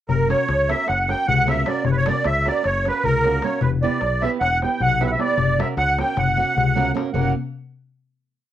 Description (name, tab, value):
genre	balkan folk, Balkan wedding band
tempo	307 BPM (eighths)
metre	9/8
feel	straight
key	F# phrygian dominant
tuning	A4 = 440 Hz
part	musette accordion	melody	0.1-7.3 s	A#4 to G5	-20 LUFS	right 2 dB	cassette tape
part	fingered electric bass	bass	0.1-7.3 s	E1 to C#2	-25 LUFS	equal	none
part	darbuka	percussion	0.1-7.3 s	none	-24 LUFS	left 6 dB	none
part	nylon-string guitar	accompaniment	0.3-7.3 s	A#3 to B4	-27 LUFS	right 9 dB	cassette tape
room	light reverb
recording	home recording on cassette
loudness	-18 LUFS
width	side -11 dB against mid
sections	0.1-7.1 A section; 7.1-8.5 final chord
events	none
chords	0.1 F#; 3.6 Em; 5.4 F#